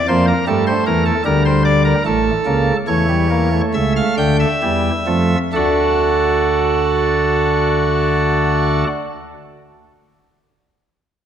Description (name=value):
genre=classical, baroque-style 3-part fugue for pipe organ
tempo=63-79 BPM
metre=4/4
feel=straight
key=unclear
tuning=A4 = 440 Hz
part: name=pipe organ, cornet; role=solo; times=0.0-8.9 s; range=A1 to G5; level=-14 LUFS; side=right 1 dB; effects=none
room=wet scoring stage reverb, RT60 2.0 s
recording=none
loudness=-14 LUFS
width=side -9 dB against mid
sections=0.0-5.5 A section; 5.5-9.3 B section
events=slowing down 0.0-5.5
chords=0.5 Gm; 2.1 A7; 5.5 D